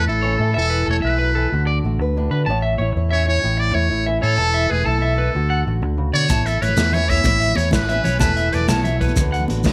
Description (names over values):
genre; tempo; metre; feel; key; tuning
highlife guitar band; 125 BPM (dotted quarters); 12/8; straight; A major; A4 = 440 Hz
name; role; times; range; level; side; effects
trumpet with metal mute; melody; 0.0-9.3 s; G#4 to E5; -24 LUFS; equal; none
fingerpicked old ladder-braced acoustic guitar; accompaniment; 0.0-9.7 s; A2 to C#5; -28 LUFS; equal; none
fingered electric bass; bass; 0.0-9.7 s; E1 to D3; -23 LUFS; equal; none
electric guitar at the edge of break-up; arpeggios; 0.2-9.4 s; A4 to A5; -27 LUFS; equal; slapback echo
crunchy breakbeat drum kit; drums; 6.3-9.7 s; hi-hat, kick drum, snare drum; -25 LUFS; equal; none
congas; percussion; 6.3-9.7 s; none; -28 LUFS; equal; none
shekere; percussion; 6.3-9.7 s; none; -27 LUFS; equal; none
room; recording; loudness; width
light reverb; none; -19 LUFS; mono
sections
0.0-9.7 A section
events
none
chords
0.0 A; 0.6 Esus4; 1.5 D6; 2.5 A; 4.4 Esus4; 5.3 D6; 6.3 A; 8.2 Esus4; 9.2 D6